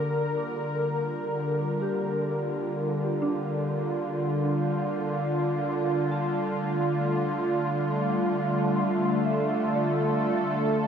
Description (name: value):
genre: ambient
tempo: free time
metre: none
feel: none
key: unclear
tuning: A4 = 439 Hz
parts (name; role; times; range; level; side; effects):
- warm analog pad; sustained chords; 0.0-10.9 s; D3 to Bb4; -25 LUFS; equal; chorus
- soft synth bell; arpeggios; 0.0-10.9 s; D4 to D6; -37 LUFS; right 1 dB; chorus, analog delay
- organ-like drone; drone; 0.1-10.9 s; G3; -35 LUFS; equal; ensemble chorus, built-in reverb
room: wet lush hall reverb, RT60 3.2 s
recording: dreamy mix soaked in reverb, cassette tape, small room ambience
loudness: -25 LUFS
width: side -7 dB against mid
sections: 0.0-10.9 A section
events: fade-in on synth drone 0.0-10.9; fade-out on synth bell 0.0-10.9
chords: 0.0 Bb; 6.2 Dm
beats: free time